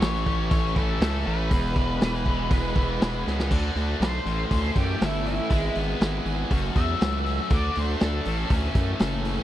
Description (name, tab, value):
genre	classic rock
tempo	120 BPM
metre	4/4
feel	straight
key	A major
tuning	A4 = 440 Hz
part	octave-fuzz lead guitar	melody	0.0-8.5 s	E4 to E5	-31 LUFS	left 1 dB	distortion, slapback echo
part	bright tonewheel organ	sustained chords	0.0-9.4 s	E3 to F5	-37 LUFS	right 1 dB	none
part	distorted electric guitar	riff	0.0-9.4 s	E2 to A4	-32 LUFS	left 14 dB	overdrive
part	distorted electric guitar	riff	0.0-9.4 s	E2 to A4	-33 LUFS	right 13 dB	overdrive
part	gritty driven synth bass	bass	0.0-9.4 s	E1 to F#2	-27 LUFS	equal	distortion
part	vintage drum kit	drums	0.0-9.4 s	crash cymbal, hi-hat, kick drum, snare drum	-25 LUFS	equal	none
room	little or no reverb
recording	dry, close 1970s-style studio recording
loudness	-22 LUFS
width	side -13 dB against mid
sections	0.0-3.5 A section; 3.5-9.4 B section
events	drum fill 3.3; lead electric guitar solo 3.5-9.4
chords	0.0 A; 1.5 E; 3.5 D; 4.3 A; 5.5 E/G#; 6.5 F#m; 7.5 D; 8.3 A